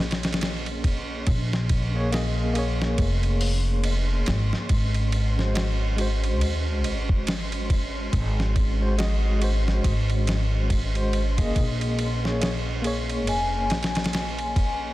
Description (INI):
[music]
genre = trip hop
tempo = 70 BPM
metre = 4/4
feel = swing 59% on 16ths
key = Bb minor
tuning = A4 = 441 Hz
[part]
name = bright tine electric piano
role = accompaniment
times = 0.0-14.9 s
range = Ab3 to Eb5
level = -31 LUFS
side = left 1 dB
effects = tremolo, tape echo
[part]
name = upright bass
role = bass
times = 0.0-14.9 s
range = F1 to Eb2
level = -25 LUFS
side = equal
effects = none
[part]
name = dusty soul sampler-style drum kit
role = drums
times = 0.0-14.8 s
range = hi-hat, kick drum, ride cymbal, snare drum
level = -27 LUFS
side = equal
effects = none
[part]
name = flickering grainy texture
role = texture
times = 0.0-14.9 s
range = Db4 to C6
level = -37 LUFS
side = right 1 dB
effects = built-in reverb
[part]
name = vibraphone with soft mallets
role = melody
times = 13.3-14.9 s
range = Ab5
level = -28 LUFS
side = left 3 dB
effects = vintage 12-bit sampler grit
[sound]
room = digital ambience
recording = dense, heavily limited modern master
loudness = -22 LUFS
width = side -17 dB against mid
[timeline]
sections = 0.0-14.9 A section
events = none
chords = 0.0 Bbm7; 4.7 Ab7; 11.6 Bbm7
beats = 0.42 | 1.27 2.13 2.99 3.85 | 4.70 5.56 6.42 7.27 | 8.13 8.99 9.85 10.70 | 11.56 12.42 13.27 14.13